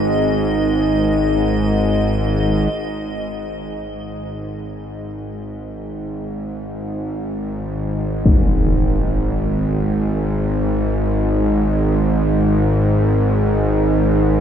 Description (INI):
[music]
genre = dark ambient drone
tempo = free time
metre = none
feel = none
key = unclear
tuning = A4 = 440 Hz
[part]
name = bowed-like drone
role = drone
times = 0.0-14.4 s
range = G#1 to G#2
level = -17 LUFS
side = equal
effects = built-in reverb
[part]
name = icy glass pad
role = texture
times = 0.0-2.8 s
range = D#5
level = -26 LUFS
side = right 1 dB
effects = chorus, built-in reverb
[part]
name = impact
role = percussion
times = 8.3-8.4 s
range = none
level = -18 LUFS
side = left 1 dB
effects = low-pass filter on sfx
[sound]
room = wet huge ambient reverb, RT60 7.8 s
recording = none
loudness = -16 LUFS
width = side -8 dB against mid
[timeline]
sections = 0.0-2.7 A section; 2.7-14.4 B section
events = fade-in on synth drone 2.7-14.4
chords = 0.0 G#5; 2.7 N.C.